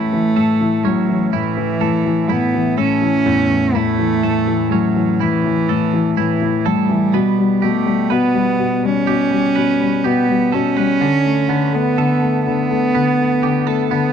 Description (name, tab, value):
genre	pop ballad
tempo	62 BPM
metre	4/4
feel	straight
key	A mixolydian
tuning	A4 = 440 Hz
part	warm cello	melody	0.0-14.1 s	E3 to C#4	-17 LUFS	right 3 dB	none
part	warm grand piano	accompaniment	0.0-14.1 s	E2 to A3	-18 LUFS	left 8 dB	none
part	twelve-string electric guitar	arpeggios	0.0-14.1 s	A2 to B4	-24 LUFS	right 14 dB	none
room	light reverb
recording	dry, close 1970s-style studio recording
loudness	-14 LUFS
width	side -8 dB against mid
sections	0.0-14.1 A section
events	none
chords	0.0 A; 7.1 G/B; 11.0 D5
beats	0.36 1.33 2.29 | 3.26 4.23 5.20 6.17 | 7.13 8.10 9.07 10.04 | 11.01 11.97 12.94 13.91